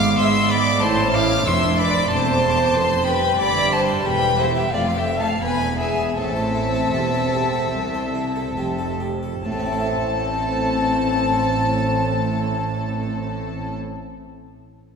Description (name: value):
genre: classical, baroque-style concerto movement with solo episodes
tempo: 67-95 BPM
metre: 4/4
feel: straight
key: A minor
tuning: A4 = 439 Hz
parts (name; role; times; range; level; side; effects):
- warm chamber violin section; melody; 0.0-13.7 s; E5 to E#6; -28 LUFS; left 3 dB; none
- warm violin; melody; 0.0-13.7 s; C5 to D6; -24 LUFS; left 2 dB; none
- rich chamber violin section; second line; 0.0-13.7 s; E4 to E#5; -25 LUFS; equal; none
- harpsichord; accompaniment; 0.0-14.1 s; C2 to E5; -30 LUFS; right 1 dB; none
- warm chamber viola section; accompaniment; 0.0-13.7 s; G3 to E4; -26 LUFS; left 1 dB; none
- warm chamber cello section; bass; 0.0-13.7 s; C2 to G#3; -26 LUFS; right 2 dB; none
- warm chamber double bass section; bass; 0.0-13.7 s; E1 to G#2; -27 LUFS; right 3 dB; none
room: wet concert hall reverb, RT60 2.4 s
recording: recorded in a church or concert hall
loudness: -18 LUFS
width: side -5 dB against mid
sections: 0.0-9.4 A section; 9.4-13.0 B section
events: slowing down 2.1-9.4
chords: 0.0 G#dim7; 0.8 Am; 3.4 Em/G; 4.7 Dm/F; 5.4 E7; 6.2 Am